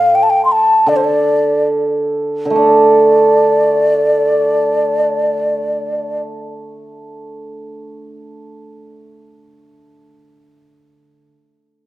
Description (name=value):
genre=chinese traditional, Chinese chamber ensemble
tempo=62-88 BPM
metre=2/4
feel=straight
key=unclear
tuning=A4 = 440 Hz
part: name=mellow xiao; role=melody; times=0.0-6.2 s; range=C5 to C6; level=-14 LUFS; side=left 1 dB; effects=none
part: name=hammered dulcimer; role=accompaniment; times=0.0-11.3 s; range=A2 to D4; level=-15 LUFS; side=right 2 dB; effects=none
room=moderate scoring stage reverb, RT60 1.6 s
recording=none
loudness=-11 LUFS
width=side -15 dB against mid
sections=0.0-2.6 A section; 2.6-6.4 B section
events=slowing down 0.0-2.6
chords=none